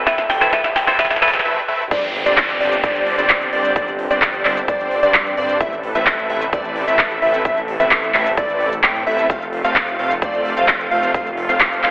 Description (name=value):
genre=EDM, festival progressive house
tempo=130 BPM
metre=4/4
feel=straight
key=unclear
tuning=A4 = 440 Hz
part: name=lush unison pad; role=sustained chords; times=0.0-11.9 s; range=C3 to B4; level=-27 LUFS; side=equal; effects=chorus, sidechain pumping
part: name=detuned saw bass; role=bass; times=0.0-11.9 s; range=F1 to A2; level=-27 LUFS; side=equal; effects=tube saturation, sidechain pumping, high-pass filter
part: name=riser, swell and downlifter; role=sound effects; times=0.0-5.6 s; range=none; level=-26 LUFS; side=equal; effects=none
part: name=mallet-like synth pluck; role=melody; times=0.1-1.4 s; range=E5 to G5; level=-21 LUFS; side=equal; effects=chorus, dub echo
part: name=semi-hollow electric guitar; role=accompaniment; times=0.1-1.3 s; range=A2 to C5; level=-20 LUFS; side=equal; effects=sidechain pumping, dub echo
part: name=dense compressed supersaw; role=riff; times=0.1-11.9 s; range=G3 to G5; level=-22 LUFS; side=equal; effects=sidechain pumping, dub echo
part: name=big-room dance drum kit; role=drums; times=0.1-11.9 s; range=crash cymbal, handclaps, hi-hat, shaker, snare drum, toms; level=-17 LUFS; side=equal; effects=none
part: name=electronic kick drum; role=drums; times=0.1-11.7 s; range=none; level=-23 LUFS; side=equal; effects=high-pass filter on kick, high-pass filter on room
part: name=plucky unison lead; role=arpeggios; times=1.9-11.9 s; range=D5 to G5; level=-20 LUFS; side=equal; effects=vintage 12-bit sampler grit, sidechain pumping, dub echo
room=moderate digital room reverb, RT60 1.1 s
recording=high-pass filter, telephone sound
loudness=-14 LUFS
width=side -22 dB against mid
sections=0.0-1.9 A section; 1.9-11.9 B section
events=build-up 0.0-1.9; drum fill 0.0-1.5, 1.5-1.9; riser 0.0-1.5; swell 1.0-1.9; break 1.5-1.9; drop 1.9-11.9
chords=0.0 Amadd9; 1.9 Gsus4; 5.6 Amadd9; 9.3 F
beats=| 0.07 0.53 0.99 1.45 | 1.91 2.37 2.84 3.30 | 3.76 4.22 4.68 5.14 | 5.61 6.07 6.53 6.99 | 7.45 7.91 8.37 8.84 | 9.30 9.76 10.22 10.68 | 11.14 11.61